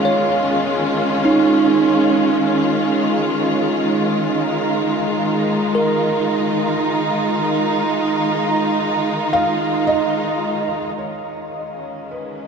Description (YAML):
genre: ambient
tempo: 54 BPM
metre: 3/4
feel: straight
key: unclear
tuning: A4 = 440 Hz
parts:
  - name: rich symphonic string section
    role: sustained chords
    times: 0.0-12.5 s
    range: D#3 to E#4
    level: -18 LUFS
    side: equal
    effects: shimmer reverb
  - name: bell-like tine electric piano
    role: arpeggios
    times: 0.0-11.0 s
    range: D#4 to E#5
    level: -21 LUFS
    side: right 3 dB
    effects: shimmer reverb, diffuse ambient delay
  - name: felt-muted upright piano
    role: melody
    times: 9.3-12.5 s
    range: B4 to E#5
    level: -22 LUFS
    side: right 1 dB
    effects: shimmer reverb, diffuse ambient delay
room: wet cathedral reverb, RT60 7.3 s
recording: dark, warm production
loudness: -16 LUFS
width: side -6 dB against mid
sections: 0.0-11.0 A section; 11.0-12.5 B section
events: none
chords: 0.0 C#add9; 11.0 C#7sus2